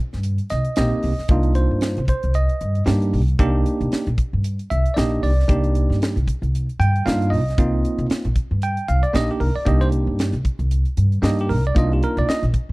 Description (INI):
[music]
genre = electric jazz fusion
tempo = 115 BPM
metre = 4/4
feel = swing 56% on 16ths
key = C minor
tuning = A4 = 440 Hz
[part]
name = upright bass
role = bass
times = 0.1-12.7 s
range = Bb1 to G2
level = -20 LUFS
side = equal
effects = none
[part]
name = crisp fusion drum kit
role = drums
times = 0.1-12.7 s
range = hi-hat, kick drum, snare drum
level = -21 LUFS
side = equal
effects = none
[part]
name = bell-like tine electric piano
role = accompaniment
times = 0.5-12.4 s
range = Bb3 to G5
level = -22 LUFS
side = right 1 dB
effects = fast stereo tremolo
[sound]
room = small room ambience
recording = dry, close 1970s-style studio recording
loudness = -17 LUFS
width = side -22 dB against mid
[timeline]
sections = 0.0-12.7 A section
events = none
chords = 0.0 Cm11